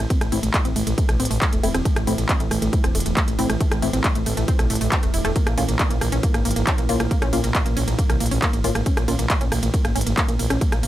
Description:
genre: driving peak-time techno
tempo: 137 BPM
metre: 4/4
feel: straight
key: A harmonic minor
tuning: A4 = 440 Hz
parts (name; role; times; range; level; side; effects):
- wide unison pluck; riff; 0.0-10.9 s; A3 to E4; -27 LUFS; right 1 dB; tube saturation, sidechain pumping, tape echo
- growling FM bass; bass; 0.0-10.9 s; E1 to C2; -25 LUFS; equal; sidechain pumping
- metallic inharmonic drone; drone; 0.0-10.9 s; A2 to E3; -31 LUFS; right 2 dB; chorus, built-in reverb, sidechain pumping
- electronic kick drum; drums; 0.1-10.7 s; none; -22 LUFS; equal; none
- techno drum kit; drums; 0.1-10.9 s; handclaps, hi-hat, ride cymbal, rim click; -26 LUFS; equal; sidechain pumping on hats, sidechain pumping on cymbals
- wavetable chord stab; stabs; 0.3-9.1 s; A3 to F4; -30 LUFS; left 2 dB; none
room: little or no reverb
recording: none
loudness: -18 LUFS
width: side -14 dB against mid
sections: 0.0-10.9 A section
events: none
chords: 0.0 Am; 5.4 Bbm

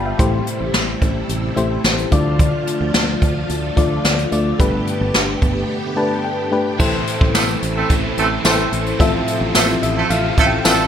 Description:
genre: 1980s-style pop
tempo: 109 BPM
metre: 4/4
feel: straight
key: A minor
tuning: A4 = 440 Hz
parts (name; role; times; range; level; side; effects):
- FM electric piano with tremolo; accompaniment; 0.0-10.9 s; G2 to B5; -21 LUFS; left 3 dB; none
- string machine, full ensemble; sustained chords; 0.0-10.9 s; C3 to A4; -24 LUFS; right 1 dB; ensemble chorus
- fingered electric bass; bass; 0.0-10.9 s; G1 to D2; -23 LUFS; right 1 dB; none
- jazz brush drum kit; drums; 0.2-10.8 s; crash cymbal, hi-hat, kick drum, snare drum, tambourine; -18 LUFS; equal; gated reverb
- biting overdriven guitar; accompaniment; 6.8-10.9 s; F2 to A3; -25 LUFS; right 2 dB; analog chorus
- mellow horn section; stabs; 7.3-10.9 s; D3 to A4; -20 LUFS; right 4 dB; digital delay
room: moderate plate reverb, RT60 0.9 s, studio ambience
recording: bright 1980s-style digital production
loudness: -15 LUFS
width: side -9 dB against mid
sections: 0.0-6.8 A section; 6.8-10.9 B section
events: break 5.7-6.8; FM electric piano fill 5.7-6.8, 9.6-10.9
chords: 0.2 Am7; 2.1 Dm; 4.6 Gadd9; 6.8 Am; 9.0 Fmaj7/A

